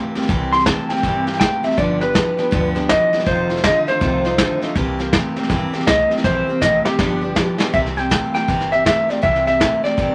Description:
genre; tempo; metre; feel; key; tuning
rockabilly; 161 BPM; 4/4; swing 63% on 8ths; C mixolydian; A4 = 440 Hz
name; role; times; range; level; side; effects
picked steel-string acoustic guitar; accompaniment; 0.0-10.1 s; F2 to G4; -25 LUFS; equal; none
electric guitar through a small old amp; riff; 0.0-10.1 s; F2 to A3; -30 LUFS; equal; vibrato effect
upright bass; bass; 0.2-10.1 s; F1 to G2; -31 LUFS; equal; none
soft brush drum kit; drums; 0.2-10.1 s; hi-hat, kick drum, snare drum; -23 LUFS; equal; none
electric guitar through a small old amp; melody; 0.5-10.1 s; G4 to C6; -20 LUFS; equal; warbly pitch drift
room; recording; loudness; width
moderate club ambience, RT60 0.5 s; none; -18 LUFS; mono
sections
0.0-7.7 A section; 7.7-10.1 B section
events
clean electric guitar solo 0.0-7.7; drum fill 6.2-7.7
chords
0.0 C7; 1.8 G7; 3.3 F7; 4.8 C7; 7.0 G7; 7.7 C7

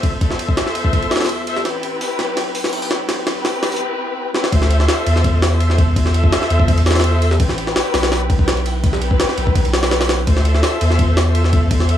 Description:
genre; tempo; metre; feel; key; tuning
drum and bass, jungle; 167 BPM; 4/4; straight; D minor; A4 = 440 Hz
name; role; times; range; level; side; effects
warm studio string section; sustained chords; 0.0-12.0 s; C4 to E5; -21 LUFS; left 2 dB; none
soft dub sub bass; bass; 0.0-12.0 s; A1 to E2; -18 LUFS; equal; high-pass filter
jungle sampler-style drum kit; drums; 0.0-12.0 s; hi-hat, kick drum, ride cymbal, snare drum; -17 LUFS; equal; overdrive
room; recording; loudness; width
light reverb; small room ambience; -14 LUFS; side -10 dB against mid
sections
0.0-4.5 A section; 4.5-12.0 B section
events
build-up 0.0-4.5; drum fill 1.7-3.8, 4.3; drop 4.5-12.0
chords
0.0 Dm9 (rootless); 1.7 Am9 (rootless); 4.5 Dm9; 7.4 Am9 (rootless); 10.3 Dm9

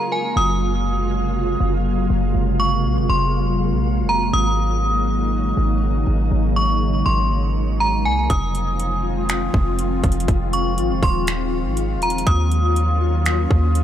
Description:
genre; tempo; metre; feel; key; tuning
hip hop, atmospheric cloud-rap; 121 BPM; 4/4; half-time; Gb lydian; A4 = 444 Hz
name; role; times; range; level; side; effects
metallic FM bell; melody; 0.0-13.7 s; Ab5 to Eb6; -24 LUFS; right 1 dB; chorus, digital delay
glassy FM pad; sustained chords; 0.0-13.8 s; C3 to F4; -23 LUFS; left 1 dB; ensemble chorus, built-in reverb, sidechain pumping
warm 808-style bass; bass; 0.4-13.8 s; Eb1 to Eb2; -20 LUFS; equal; none
trap drum kit; drums; 8.3-13.8 s; finger snaps, hi-hat, kick drum; -22 LUFS; equal; overdrive
room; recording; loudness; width
little or no reverb; none; -17 LUFS; side -10 dB against mid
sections
0.4-13.8 A section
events
none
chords
0.4 Gbmaj9#11; 4.3 Ab9sus4; 8.3 Fm7; 12.3 Ebm9

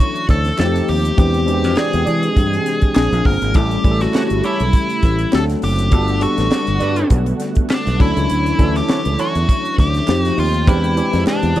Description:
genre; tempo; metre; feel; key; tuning
polished 1980s jazz-funk pop; 101 BPM; 4/4; swing 54% on 16ths; D major; A4 = 440 Hz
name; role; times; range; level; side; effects
nasal lead guitar with a parked wah; melody; 0.0-11.6 s; D4 to Bb4; -21 LUFS; left 1 dB; overdrive
tine electric piano; accompaniment; 0.0-11.6 s; E3 to G5; -20 LUFS; left 2 dB; medium stereo tremolo, wide subtle chorus
warm analog pad; sustained chords; 0.0-11.6 s; C3 to G5; -28 LUFS; right 3 dB; chorus
tight funk drum kit; drums; 0.2-11.6 s; crash cymbal, hi-hat, kick drum, snare drum; -16 LUFS; equal; none
fingered electric bass; bass; 0.3-11.6 s; F#1 to E3; -18 LUFS; equal; none
group handclap; percussion; 0.6-11.4 s; none; -36 LUFS; right 8 dB; none
mellow horn section; second line; 1.8-11.6 s; C#4 to D5; -26 LUFS; right 6 dB; none
room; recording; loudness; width
studio ambience; dry, close 1970s-style studio recording; -14 LUFS; side -14 dB against mid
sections
0.0-11.6 A section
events
none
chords
0.0 Dmaj9; 0.6 F9; 1.2 E7alt; 3.0 Bb9; 3.5 A7; 5.3 D7; 5.9 Gmaj9; 8.0 Dmaj9; 10.1 F9; 10.7 E7alt

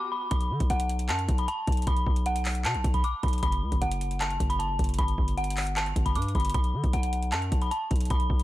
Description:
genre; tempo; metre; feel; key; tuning
hip hop, trap; 154 BPM; 4/4; half-time; B minor; A4 = 440 Hz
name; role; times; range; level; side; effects
dark detuned synth bell; melody; 0.0-8.4 s; F#5 to D6; -30 LUFS; equal; chorus, low-pass filter, ping-pong delay
distorted 808-style bass; bass; 0.3-8.4 s; F#1 to D3; -29 LUFS; equal; distortion
booming analog drum machine; drums; 0.3-8.4 s; handclaps, hi-hat, kick drum; -28 LUFS; equal; none
room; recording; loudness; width
digital ambience; none; -25 LUFS; side -15 dB against mid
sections
0.3-8.4 A section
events
break 0.0-0.3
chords
0.3 B7(no3); 3.4 F#sus4; 5.0 Gmaj7; 6.5 B7(no3)

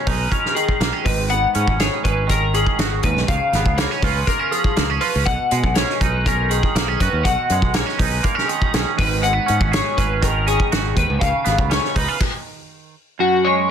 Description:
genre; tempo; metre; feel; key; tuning
math rock and midwest emo; 121 BPM; 4/4; straight; unclear; A4 = 440 Hz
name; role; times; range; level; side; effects
twangy electric guitar; accompaniment; 0.0-13.7 s; Gb2 to Ab4; -23 LUFS; right 12 dB; analog chorus
electric guitar at the edge of break-up; arpeggios; 0.0-13.7 s; Gb4 to Gb5; -21 LUFS; left 5 dB; analog chorus, plate reverb
modern bright fingered electric bass; bass; 0.1-12.1 s; Ab1 to B2; -22 LUFS; equal; none
loose indie drum kit; drums; 0.1-12.3 s; crash cymbal, hi-hat, kick drum, snare drum; -21 LUFS; equal; none
room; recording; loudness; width
light reverb; dense, heavily limited modern master; -16 LUFS; side -8 dB against mid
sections
0.0-13.2 A section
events
stop 12.2-13.2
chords
0.0 B69; 1.1 Abm11; 3.3 Db9; 5.3 B69; 9.0 Abm11; 11.2 Db9; 13.2 Gbsus2

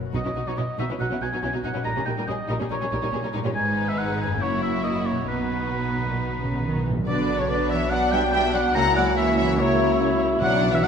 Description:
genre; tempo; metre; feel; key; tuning
classical; 141 BPM; 4/4; straight; B major, B minor from 7.1 s; A4 = 440 Hz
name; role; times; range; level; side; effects
concert harp; arpeggios; 0.0-10.9 s; F#2 to E5; -33 LUFS; left 9 dB; none
warm symphonic violin section; melody; 0.1-10.9 s; E4 to F#5; -33 LUFS; left 6 dB; none
rich symphonic violin section; second line; 0.1-10.9 s; C#4 to A#5; -30 LUFS; left 3 dB; none
warm oboe; second line; 0.1-10.9 s; B4 to A#5; -28 LUFS; right 1 dB; none
dark studio viola section; accompaniment; 0.1-10.9 s; F#3 to E4; -29 LUFS; right 1 dB; none
rich symphonic double bass section; bass; 0.1-10.9 s; F#1 to C#2; -32 LUFS; right 4 dB; none
warm symphonic cello section; bass; 0.1-10.9 s; F#2 to A#3; -30 LUFS; right 3 dB; none
timpani; percussion; 0.1-0.8, 5.3-7.1, 10.4-10.9 s; B2; -32 LUFS; right 2 dB; none
large flute ensemble; second line; 7.1-10.9 s; C#5 to A#5; -29 LUFS; right 1 dB; none
dark French horn section; sustained chords; 7.1-10.9 s; A#3 to F#4; -28 LUFS; left 3 dB; none
mellow bassoon; accompaniment; 7.9-10.9 s; C#4 to E4; -27 LUFS; equal; none
room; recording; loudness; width
wet concert hall reverb, RT60 2.2 s; none; -21 LUFS; side -7 dB against mid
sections
0.0-7.1 A section; 7.1-10.9 B section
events
timpani fill 5.3-7.1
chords
0.1 B; 1.9 D#7/A#; 3.6 G#m; 4.4 F#7; 5.3 B; 7.1 Bm; 8.8 F#7/C#

